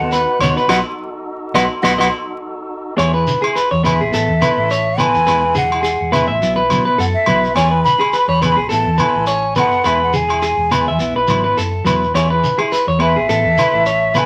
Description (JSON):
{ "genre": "highlife guitar band", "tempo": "105 BPM", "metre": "4/4", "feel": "swing 55% on 16ths", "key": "E major", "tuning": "A4 = 440 Hz", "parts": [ { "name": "mellow hollow jazz flute", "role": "melody", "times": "0.0-14.3 s", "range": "E5 to B5", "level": "-20 LUFS", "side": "equal", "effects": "none" }, { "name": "clean electric guitar", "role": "accompaniment", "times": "0.0-14.3 s", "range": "F#3 to A4", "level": "-26 LUFS", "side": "equal", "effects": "spring reverb" }, { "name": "tonewheel organ", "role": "sustained chords", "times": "0.0-3.0 s", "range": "D#4 to B4", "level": "-30 LUFS", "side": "equal", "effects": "slow rotary speaker" }, { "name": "clean electric guitar", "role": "arpeggios", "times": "0.0-14.3 s", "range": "F#4 to E5", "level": "-20 LUFS", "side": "equal", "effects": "none" }, { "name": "hollow-body short-scale fingered electric bass", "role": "bass", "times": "0.0-14.3 s", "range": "E1 to B2", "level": "-24 LUFS", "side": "equal", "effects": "none" }, { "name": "shekere", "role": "percussion", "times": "0.1-14.3 s", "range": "none", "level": "-26 LUFS", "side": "equal", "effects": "none" }, { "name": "agogo bells", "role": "percussion", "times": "0.4-14.3 s", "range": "none", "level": "-25 LUFS", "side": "equal", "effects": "none" } ], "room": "moderate studio reverb, RT60 0.6 s", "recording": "vinyl crackle", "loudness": "-15 LUFS", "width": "mono", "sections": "0.0-3.0 A section; 3.0-14.3 B section", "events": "band accent 0.7-3.0", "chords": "0.0 B; 3.0 E; 4.1 Asus2; 5.3 E; 6.4 Bsus4; 7.6 E; 8.7 Asus2; 9.8 E; 11.0 Bsus4; 12.1 E; 13.3 Asus2" }